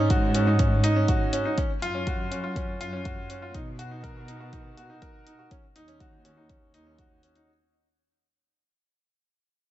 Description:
piano and strings electronica; 122 BPM; 4/4; straight; Eb minor; A4 = 440 Hz
bright upright piano; riff; 0.0-7.5 s; Db4 to A#4; -28 LUFS; right 1 dB; tape echo
dark studio cello section; bass; 0.0-7.2 s; Eb2 to B2; -28 LUFS; equal; sidechain pumping
electronic hi-hat; drums; 0.1-7.5 s; -37 LUFS; left 3 dB
electronic kick drum; drums; 0.1-7.1 s; -28 LUFS; equal; overdrive
light reverb, small room ambience; nothing above 8.0 kHz; -23 LUFS; side -14 dB against mid
0.0-7.5 A section
fade-out 0.0-7.5
0.0 Ab7sus4; 1.6 Gb5; 3.5 Bmaj7; 5.5 Ebm7

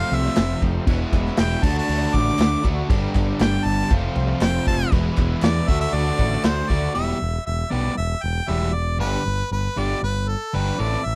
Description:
classic rock; 118 BPM; 4/4; straight; A4 = 440 Hz
clear harmonica; melody; 0.0-11.2 s; A4 to D6; -28 LUFS; equal
bright tonewheel organ; sustained chords; 0.0-6.9 s; A3 to D5; -37 LUFS; equal
crunchy overdriven guitar; riff; 0.0-11.0 s; E2 to A4; -27 LUFS; equal
growling picked electric bass; bass; 0.0-11.2 s; E1 to E2; -26 LUFS; equal; overdrive
vintage drum kit; drums; 0.1-6.8 s; crash cymbal, kick drum, snare drum; -25 LUFS; equal
group handclap; percussion; 0.4-6.6 s; -40 LUFS; equal
little or no reverb; -21 LUFS; mono
0.0-7.0 A section; 7.0-11.2 B section
0.0 F; 0.9 E; 1.6 D; 2.9 Gadd9; 3.9 F; 4.9 E; 5.7 D; 7.0 Em; 9.0 G

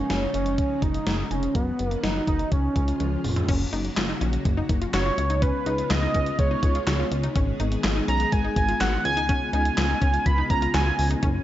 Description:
synth-pop; 124 BPM; 4/4; straight; A4 = 442 Hz
octave-doubled lead; melody; 0.0-11.1 s; B3 to B5; -26 LUFS; right 2 dB; chorus, analog delay
string machine, full ensemble; sustained chords; 0.0-11.4 s; C#3 to G#4; -31 LUFS; left 1 dB; ensemble chorus
chorused synth bass; bass; 0.0-11.4 s; E#1 to C#2; -26 LUFS; equal
gated 80s digital drum machine; drums; 0.1-11.3 s; crash cymbal, handclaps, hi-hat, kick drum, snare drum, toms; -26 LUFS; equal; gated reverb, gated reverb snare
wide unison pluck; arpeggios; 3.5-11.4 s; C#4 to F#4; -32 LUFS; left 3 dB; analog delay
light reverb; nothing above 7.7 kHz; -21 LUFS; side -13 dB against mid
0.0-3.5 A section; 3.5-11.4 B section
drum fill 3.0-3.5
0.0 C#add9/F#; 1.5 B/F#; 2.5 C#; 3.5 F#; 5.2 C#7; 7.4 G#m; 9.0 C#7

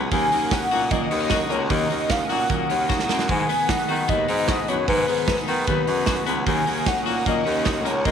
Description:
jangly indie pop; 151 BPM; 4/4; straight; Eb minor; A4 = 440 Hz
picked steel-string acoustic guitar; accompaniment; 0.0-8.1 s; Ab2 to Cb5; -30 LUFS; right 12 dB
lush unison pad; sustained chords; 0.0-8.1 s; Ab4 to Eb6; -32 LUFS; right 1 dB; chorus
twelve-string electric guitar; arpeggios; 0.0-8.1 s; Eb3 to Ab4; -27 LUFS; left 12 dB; tremolo
clear baritone saxophone; bass; 0.0-8.1 s; Db2 to Eb3; -26 LUFS; equal
warm velvety synth lead; melody; 0.1-8.1 s; Cb5 to Ab5; -24 LUFS; left 2 dB; chorus
big rock drum kit; drums; 0.1-8.1 s; hi-hat, kick drum, snare drum; -26 LUFS; right 3 dB
moderate spring reverb, RT60 1.5 s, small room ambience; 1960s-style stereo with parts hard left and right; -19 LUFS; side -8 dB against mid
0.0-8.1 A section
drum fill 2.9-3.3
0.1 Ebm7; 3.3 Abm7; 6.5 Ebm7

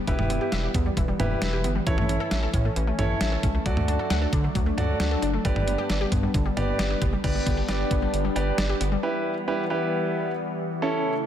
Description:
synth-pop; 134 BPM; 4/4; straight; G major; A4 = 441 Hz
phased analog pad; sustained chords; 0.0-11.3 s; C#3 to D4; -31 LUFS; left 1 dB; phaser, chorus
analog pluck; arpeggios; 0.0-9.0 s; D3 to F#5; -32 LUFS; left 2 dB; chorus, tape echo
clear concert grand piano; accompaniment; 0.1-11.1 s; C#4 to A5; -28 LUFS; right 2 dB
round analog bass; bass; 0.1-9.0 s; E1 to D3; -27 LUFS; equal
detuned 8-bit digital drum machine; drums; 0.1-8.9 s; crash cymbal, hi-hat, kick drum, snare drum, toms; -27 LUFS; equal
moderate lush hall reverb, RT60 1.6 s; dense, heavily limited modern master; -22 LUFS; side -10 dB against mid
0.0-7.2 A section; 7.2-9.0 B section; 9.0-11.3 C section
grand piano fill 3.0-3.7
0.1 Em; 1.9 A; 3.7 D; 5.4 G; 9.0 Em

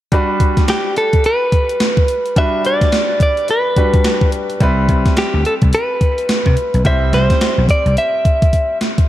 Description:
R&B, new jack swing; 107 BPM; 4/4; swing 61% on 16ths; G major; A4 = 440 Hz
bright concert grand piano; accompaniment; 0.1-9.1 s; G3 to C5; -22 LUFS; equal
gated 80s digital drum machine; drums; 0.1-9.1 s; hi-hat, kick drum, snare drum; -15 LUFS; equal; gated reverb, gated reverb snare, overdrive
direct-recorded clean electric guitar; melody; 0.7-8.8 s; G4 to E5; -17 LUFS; equal; tape echo
vintage slap bass; bass; 4.6-7.9 s; B1 to C3; -15 LUFS; equal
light reverb; dark, warm production; -12 LUFS; side -13 dB against mid
0.1-9.1 A section
drum fill 8.5-9.1
0.1 Gmaj7; 4.6 Cmaj7

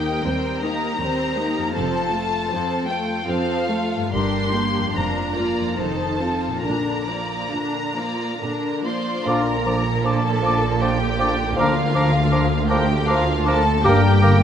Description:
classical; 66-83 BPM; 3/4; rubato; Bb major; A4 = 440 Hz
warm symphonic violin section; melody; 0.0-14.4 s; F5 to C6; -26 LUFS; left 2 dB
rich chamber violin section; second line; 0.0-14.4 s; D4 to D5; -28 LUFS; left 2 dB
warm studio viola section; accompaniment; 0.0-14.4 s; D3 to G4; -26 LUFS; right 2 dB
concert harp; arpeggios; 0.0-14.4 s; F2 to D5; -26 LUFS; left 5 dB
warm chamber cello section; bass; 0.0-14.4 s; D2 to Bb2; -26 LUFS; right 4 dB
warm chamber double bass section; bass; 0.0-14.4 s; F1 to Eb2; -26 LUFS; right 3 dB
warm bassoon; accompaniment; 9.2-14.4 s; F3 to Bb3; -26 LUFS; right 2 dB
mellow French horn section; sustained chords; 9.2-14.1 s; G3 to D4; -27 LUFS; left 3 dB
bright oboe; second line; 9.3-14.4 s; Bb4 to D5; -28 LUFS; right 2 dB
mellow hollow silver concert flute; second line; 9.3-14.3 s; D6; -28 LUFS; equal
warm clarinet; second line; 9.3-14.4 s; D4 to G4; -29 LUFS; right 1 dB
warm trumpet section; stabs; 9.3-14.1 s; F4 to Bb4; -27 LUFS; right 1 dB
wet scoring stage reverb, RT60 1.6 s; -18 LUFS; side -9 dB against mid
0.0-9.3 A section; 9.3-14.4 B section
0.0 Cm7/Eb; 1.8 F; 4.1 Gm; 5.0 Bb/F; 6.7 Bb; 11.6 Bb/D; 13.8 Gm

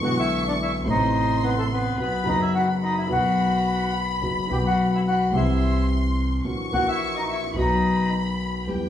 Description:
tango; 108 BPM; 4/4; rubato; A4 = 441 Hz
bandoneon; melody; 0.0-8.1 s; A3 to G5; -24 LUFS; left 1 dB
warm studio violin section; second line; 0.0-8.9 s; G5 to C#6; -30 LUFS; left 2 dB
warm concert grand piano; accompaniment; 0.0-8.9 s; F#1 to G4; -24 LUFS; equal
upright bass; bass; 0.0-8.9 s; F#1 to E2; -28 LUFS; equal
wet large studio reverb, RT60 0.9 s; band playing live in one room, small room ambience; -20 LUFS; side -10 dB against mid
0.0-8.9 A section
0.0 E7; 0.9 Am; 2.0 B; 5.3 C; 6.4 F#7/A#; 7.6 B

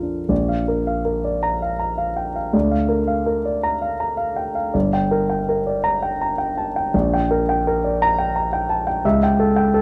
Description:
classical, romantic character piece for solo piano; 72-90 BPM; 3/4; rubato; Bb major; A4 = 436 Hz
warm concert grand piano; solo; 0.0-9.8 s; G1 to Bb5; -20 LUFS; equal
light reverb; close, detailed microphones; -20 LUFS; mono
0.3-9.8 A section
0.3 Bb; 2.5 Bb/D; 4.7 Gm; 6.9 Gm/Bb; 9.0 A7/C#

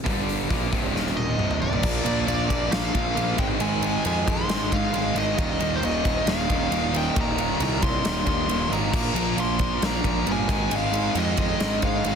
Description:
hard rock; 135 BPM; 4/4; straight; A4 = 440 Hz
distorted electric guitar; riff; 0.0-12.2 s; C2 to Bb3; -29 LUFS; right 14 dB; overdrive
heavy high-gain guitar; riff; 0.0-12.2 s; C2 to Bb3; -30 LUFS; left 13 dB; distortion
high-gain distorted guitar; riff; 0.1-12.2 s; C2 to Bb3; -32 LUFS; left 2 dB; distortion
fuzz picked electric bass; bass; 0.1-12.2 s; C1 to Ab2; -28 LUFS; equal; overdrive
huge arena drum kit; drums; 0.1-12.1 s; crash cymbal, hi-hat, kick drum, ride cymbal, snare drum, toms; -27 LUFS; equal
dark smooth lead guitar; melody; 1.2-12.2 s; C5 to C6; -29 LUFS; equal; overdrive, tape echo
light reverb; dense, heavily limited modern master; -21 LUFS; side -7 dB against mid
0.0-1.8 A section; 1.8-12.2 B section
drum fill 0.9-1.8
0.1 G5; 0.5 C5; 0.9 Eb5; 1.4 Cm; 1.8 Bb; 3.4 Ab; 5.4 Eb5; 8.9 Bb5; 10.5 Ab5

